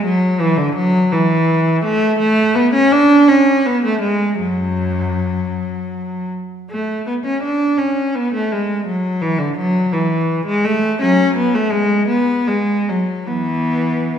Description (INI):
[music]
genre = classical, baroque-style suite movement for unaccompanied cello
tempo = 50-57 BPM (dotted quarters)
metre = 6/8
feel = rubato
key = F# minor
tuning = A4 = 435 Hz
[part]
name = clear cello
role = solo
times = 0.0-14.2 s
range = F#2 to D4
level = -14 LUFS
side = equal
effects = none
[sound]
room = wet recital hall reverb, RT60 1.6 s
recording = minimal, uncompressed stereo recording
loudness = -14 LUFS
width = side -8 dB against mid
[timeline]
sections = 0.0-6.7 A section; 6.7-14.2 A section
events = none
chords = none